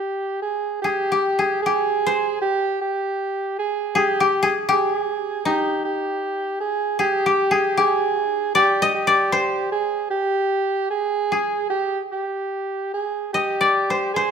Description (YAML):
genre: japanese traditional, Japanese chamber music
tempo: 76 BPM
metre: 4/4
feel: rubato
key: G miyako bushi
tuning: A4 = 439 Hz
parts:
  - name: koto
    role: melody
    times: 0.0-14.3 s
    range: Eb4 to Eb5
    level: -20 LUFS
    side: left 3 dB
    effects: none
  - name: warm soprano saxophone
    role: second line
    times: 0.0-14.3 s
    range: G4 to Ab4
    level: -22 LUFS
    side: right 3 dB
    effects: none
room: moderate recital hall reverb, RT60 1.6 s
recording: minimal, uncompressed stereo recording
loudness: -19 LUFS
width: side -7 dB against mid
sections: 0.8-14.3 A section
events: none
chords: none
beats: 0.03 | 0.84 1.63 2.42 3.19 | 3.95 4.71 5.48 6.24 | 7.00 7.78 8.56 9.34 | 10.13 10.92 11.72 12.53 | 13.35 14.15